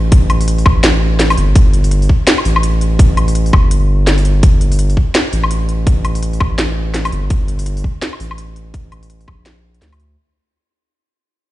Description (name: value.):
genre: half-time drum and bass.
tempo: 167 BPM.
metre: 4/4.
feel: swing 60% on 16ths, half-time.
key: G minor.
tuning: A4 = 441 Hz.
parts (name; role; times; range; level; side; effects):
saturated sub bass; bass; 0.0-10.2 s; G1 to D2; -14 LUFS; equal; none.
drum and bass drum kit; drums; 0.1-10.1 s; hi-hat, snare drum, woodblock; -17 LUFS; left 1 dB; none.
electronic kick drum; drums; 0.1-9.4 s; none; -10 LUFS; equal; none.
room: digital ambience.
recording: played on a big sound system in a bare room, stone room reverb, nothing above 10.8 kHz.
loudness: -11 LUFS.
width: side -16 dB against mid.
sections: 0.0-10.2 A section.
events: drop 0.0-10.2; fade-out 4.4-10.2.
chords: none.